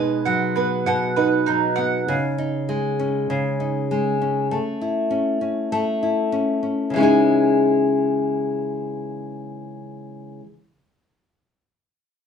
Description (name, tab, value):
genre	pop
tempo	99 BPM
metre	4/4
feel	swing 60% on 16ths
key	C# minor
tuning	A4 = 440 Hz
part	nylon-string guitar	accompaniment	0.0-10.5 s	B2 to G#4	-20 LUFS	left 2 dB	none
part	bowl-back mandolin	arpeggios	0.0-2.6 s	G#3 to F#5	-22 LUFS	right 7 dB	none
room	wet small room reverb, RT60 0.5 s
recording	band playing live in one room, studio ambience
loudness	-19 LUFS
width	side -7 dB against mid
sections	0.0-6.9 A section; 6.9-9.4 B section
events	none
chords	0.0 G#m7/B; 2.1 C#sus2; 4.5 A; 6.9 C#madd9